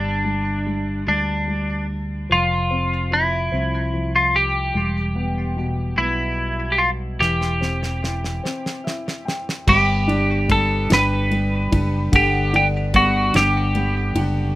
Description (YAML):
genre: six-eight pop ballad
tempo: 49 BPM (dotted quarters)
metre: 6/8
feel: straight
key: G major from 9.7 s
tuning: A4 = 443 Hz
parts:
  - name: twelve-string electric guitar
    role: melody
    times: 0.0-14.2 s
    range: D4 to B4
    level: -20 LUFS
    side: equal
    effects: tape echo
  - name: warm baby grand piano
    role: accompaniment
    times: 0.0-14.6 s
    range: B2 to G5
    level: -25 LUFS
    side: left 1 dB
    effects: none
  - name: fingered electric bass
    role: bass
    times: 0.0-14.5 s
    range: E1 to D2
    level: -24 LUFS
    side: equal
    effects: none
  - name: damped 70s drum kit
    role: drums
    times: 7.2-14.3 s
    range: crash cymbal, kick drum, ride cymbal, snare drum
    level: -22 LUFS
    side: right 1 dB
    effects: none
  - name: picked steel-string acoustic guitar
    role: arpeggios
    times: 9.7-14.6 s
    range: B3 to G4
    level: -29 LUFS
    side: right 2 dB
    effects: none
room: light reverb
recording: rough home demo mix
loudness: -18 LUFS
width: side -16 dB against mid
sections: 0.0-9.7 A section; 9.7-14.6 B section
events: drum fill 7.2-9.7; break 8.4-9.7; grand piano fill 8.4-9.7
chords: 0.0 G5; 2.3 F5; 4.7 Em; 7.2 C/E; 9.7 G